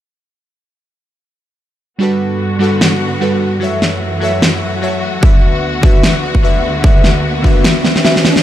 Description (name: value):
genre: future bass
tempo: 149 BPM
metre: 4/4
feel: swing 56% on 16ths, half-time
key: D major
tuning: A4 = 440 Hz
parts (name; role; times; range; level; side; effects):
- glassy digital keys; accompaniment; 2.0-8.4 s; D3 to E5; -16 LUFS; equal; chorus, sidechain pumping, tape echo
- rich studio string section; sustained chords; 2.0-8.4 s; D2 to F#4; -19 LUFS; equal; sidechain pumping, low-pass filter
- electronic snare drum; drums; 2.8-8.4 s; none; -14 LUFS; equal; studio reverb
- electronic kick drum; drums; 5.2-7.5 s; none; -10 LUFS; equal; studio reverb
- riser; sound effects; 6.3-8.4 s; none; -20 LUFS; equal; none
room: little or no reverb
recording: none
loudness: -10 LUFS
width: side -12 dB against mid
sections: 2.0-8.4 A section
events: riser 6.3-8.4; drum fill 7.8-8.4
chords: 2.0 Gmaj7; 3.6 F#m7; 5.2 D6